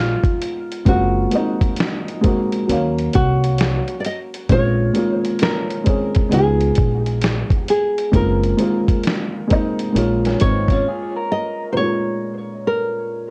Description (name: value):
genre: lo-fi hip hop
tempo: 66 BPM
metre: 4/4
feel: swing 65% on 16ths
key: Bb minor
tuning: A4 = 440 Hz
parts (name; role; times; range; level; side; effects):
- nylon-string guitar; melody; 0.0-13.3 s; F4 to Eb5; -25 LUFS; equal; analog delay
- dark upright piano; accompaniment; 0.0-13.3 s; Bb2 to F5; -23 LUFS; equal; none
- upright bass; bass; 0.0-10.8 s; Gb1 to Eb2; -22 LUFS; equal; tube saturation
- dusty soul sampler-style drum kit; drums; 0.2-10.8 s; hi-hat, kick drum, snare drum; -22 LUFS; equal; none
- electric guitar through a small old amp; second line; 10.3-11.7 s; Bb3 to Bb4; -27 LUFS; equal; none
room: light reverb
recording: worn, warbling old tape, cassette tape, warbly pitch drift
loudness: -19 LUFS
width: mono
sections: 0.0-11.8 A section; 11.8-13.3 B section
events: break 10.9-11.8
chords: 0.0 Db7 (rootless); 0.9 Gbmaj9#11; 2.7 Ebm7; 4.5 Bbm7; 6.3 Db7; 8.1 Gbmaj9#11; 10.0 Bbm7